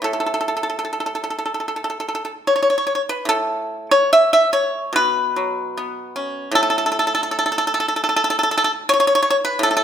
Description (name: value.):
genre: chinese traditional, Chinese solo plucked strings.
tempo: 71-80 BPM.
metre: 4/4.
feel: rubato.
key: A gong mode.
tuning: A4 = 440 Hz.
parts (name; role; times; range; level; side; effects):
pipa; solo; 0.0-9.8 s; A2 to E5; -17 LUFS; equal; none.
room: moderate recital hall reverb, RT60 1.4 s.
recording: none.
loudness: -17 LUFS.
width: side -9 dB against mid.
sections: 0.0-3.3 A section; 3.3-9.8 B section.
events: none.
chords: none.